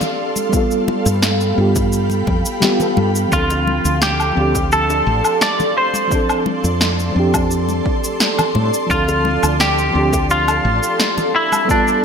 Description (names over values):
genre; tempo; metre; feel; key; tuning
sunset chillout; 86 BPM; 4/4; straight; D dorian; A4 = 440 Hz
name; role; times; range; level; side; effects
mellow FM electric piano; accompaniment; 0.0-12.0 s; F3 to A4; -21 LUFS; equal; chorus, tremolo, auto-pan, digital delay, shimmer reverb
ethereal airy pad; sustained chords; 0.0-12.0 s; A4 to C6; -22 LUFS; right 2 dB; ensemble chorus, built-in reverb, tremolo, shimmer reverb
electronic cabasa, snare drum and woodblock; drums; 0.0-12.0 s; none; -20 LUFS; left 1 dB; gated reverb
congas and bongos; percussion; 0.0-11.7 s; none; -26 LUFS; left 4 dB; none
electronic kick drum; drums; 0.5-11.8 s; none; -21 LUFS; equal; none
woody fretless electric bass; bass; 1.1-10.8 s; A1 to A2; -19 LUFS; equal; none
semi-hollow electric guitar; melody; 3.3-12.0 s; D4 to D5; -18 LUFS; equal; analog chorus, digital delay, shimmer reverb
room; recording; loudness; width
moderate plate reverb, RT60 1.7 s; bright 1980s-style digital production; -14 LUFS; side -6 dB against mid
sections
0.0-12.0 A section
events
none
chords
0.0 Dm7; 0.5 G9; 3.3 Dm7; 6.1 F6; 8.9 Dm7